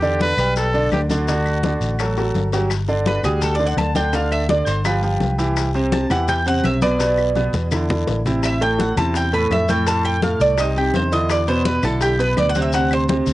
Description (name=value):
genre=latin, salsa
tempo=168 BPM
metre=4/4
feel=straight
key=G major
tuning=A4 = 444 Hz
part: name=clear trumpet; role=melody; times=0.0-2.1 s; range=F#4 to B4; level=-23 LUFS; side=equal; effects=cassette tape, plate reverb
part: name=clear concert grand piano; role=accompaniment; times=0.0-13.3 s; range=A2 to D5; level=-21 LUFS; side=right 1 dB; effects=cassette tape, plate reverb
part: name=fingered electric bass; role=bass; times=0.0-13.3 s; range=G1 to F2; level=-22 LUFS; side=equal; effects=none
part: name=congas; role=percussion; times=0.0-13.3 s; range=none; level=-26 LUFS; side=left 2 dB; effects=none
part: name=maracas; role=percussion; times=0.0-13.3 s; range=none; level=-35 LUFS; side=left 7 dB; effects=none
part: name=bongos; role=percussion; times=0.2-13.3 s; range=none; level=-31 LUFS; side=left 8 dB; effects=none
part: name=guiro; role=percussion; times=0.2-13.3 s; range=none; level=-38 LUFS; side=left 8 dB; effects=none
part: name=claves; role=percussion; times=0.4-13.1 s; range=none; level=-32 LUFS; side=left 7 dB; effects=none
part: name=Cuban tres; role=melody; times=3.1-13.0 s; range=G4 to A5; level=-21 LUFS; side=right 1 dB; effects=cassette tape, plate reverb
room=light reverb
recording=home recording on cassette, nothing above 10.9 kHz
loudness=-16 LUFS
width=side -16 dB against mid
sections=0.0-2.7 A section; 2.7-13.3 B section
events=drum fill 2.2-2.7, 7.4-8.4; Cuban tres solo 2.7-13.3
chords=0.0 Em7; 1.3 D; 2.7 G5; 4.1 G7sus4; 4.9 G6; 5.6 Cmaj7; 7.0 Bmadd11; 7.7 Amadd11; 8.4 Am; 9.9 F6; 11.3 E5; 12.7 D7